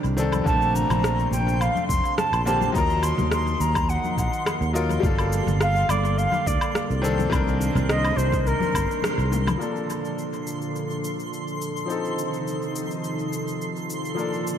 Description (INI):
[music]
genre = sunset chillout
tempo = 105 BPM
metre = 4/4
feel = straight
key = Bb major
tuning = A4 = 440 Hz
[part]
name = bright baby grand piano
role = accompaniment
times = 0.0-14.6 s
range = D3 to Bb4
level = -29 LUFS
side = moving between left 5 dB and right 4 dB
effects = auto-pan, low-pass filter, tape echo
[part]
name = airy breathy pad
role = sustained chords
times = 0.0-14.6 s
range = Bb2 to C5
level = -30 LUFS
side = right 1 dB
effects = chorus
[part]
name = sustaining fretless electric bass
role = bass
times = 0.0-9.5 s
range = F1 to Eb2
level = -24 LUFS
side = equal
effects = none
[part]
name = deep house drum kit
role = drums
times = 0.0-14.6 s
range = cabasa, rim click, toms, woodblock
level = -31 LUFS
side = left 1 dB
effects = overdrive, small room ambience, tape echo
[part]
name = congas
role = percussion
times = 0.3-9.6 s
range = none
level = -33 LUFS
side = left 4 dB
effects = none
[part]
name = silver concert flute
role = melody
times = 0.5-9.0 s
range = Bb4 to C6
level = -26 LUFS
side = equal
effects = tape echo
[part]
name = electronic kick drum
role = drums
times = 0.5-8.9 s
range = none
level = -27 LUFS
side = equal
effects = small room ambience
[part]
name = twinkling granular texture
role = texture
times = 1.0-14.6 s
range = C6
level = -36 LUFS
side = equal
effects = built-in reverb
[sound]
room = light reverb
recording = echo-heavy mix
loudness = -21 LUFS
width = side -9 dB against mid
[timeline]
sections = 0.0-9.6 A section; 9.6-14.6 B section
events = filter sweep on grand piano 0.0-9.6; band accent 9.0; drum fill 9.3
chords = 0.5 Bbmaj9; 2.7 Ebmadd9; 5.0 Gm9; 7.0 Cm9; 9.6 Bbmaj7; 11.9 F7